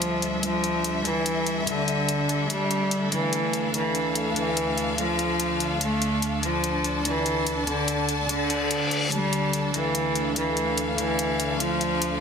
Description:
heavy wobble dubstep; 145 BPM; 4/4; half-time; D minor; A4 = 435 Hz
warm cello; melody; 0.0-12.2 s; D3 to A3; -26 LUFS; equal; ping-pong delay
evolving wavetable pad; sustained chords; 0.0-12.2 s; D2 to D4; -30 LUFS; equal; phaser, built-in reverb
electronic hi-hat; drums; 0.0-12.1 s; -29 LUFS; left 2 dB; overdrive, studio reverb
rich studio string section; texture; 0.0-12.2 s; D4 to A5; -30 LUFS; equal
reverse cymbal; sound effects; 8.4-9.1 s; -30 LUFS; left 3 dB
moderate lush hall reverb, RT60 1.9 s, studio reverb; heavily compressed radio sound, multiband compression; -22 LUFS; side -6 dB against mid
0.0-12.2 A section
filter sweep on ambient pad 0.0-12.2; reverse cymbal 8.4-9.1
0.0 Dm

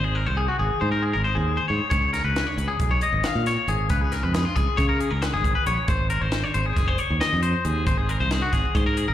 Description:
math rock and midwest emo; 272 BPM (eighths); 9/8; straight; A4 = 439 Hz
twangy electric guitar; arpeggios; 0.0-9.1 s; E#4 to E#5; -24 LUFS; left 4 dB; spring reverb, slapback echo
modern bright fingered electric bass; bass; 0.0-9.1 s; F#1 to C#3; -24 LUFS; right 1 dB
compact cocktail drum kit; drums; 1.9-9.1 s; hi-hat, kick drum, snare drum; -26 LUFS; right 1 dB
small room ambience; live gig heard through the venue's PA, club reverb; -21 LUFS; side -11 dB against mid
0.0-9.1 A section
0.0 G#; 1.9 C#7; 5.9 G#

